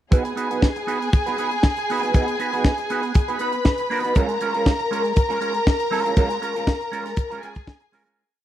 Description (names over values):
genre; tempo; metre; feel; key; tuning
disco; 119 BPM; 4/4; straight; G# dorian; A4 = 440 Hz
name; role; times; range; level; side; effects
dark studio violin section; second line; 0.1-8.2 s; G#4 to B5; -24 LUFS; left 2 dB; tape echo
mellow electric guitar; accompaniment; 0.1-8.2 s; G#3 to B4; -26 LUFS; right 5 dB; wah, spring reverb
tight funk drum kit; drums; 0.1-8.2 s; hi-hat, kick drum, snare drum; -18 LUFS; equal; none
room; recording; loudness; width
little or no reverb; dry, close 1970s-style studio recording; -19 LUFS; side -12 dB against mid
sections
0.1-8.2 breakdown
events
fade-out 6.2-8.2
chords
0.1 G#m7; 4.2 A#m7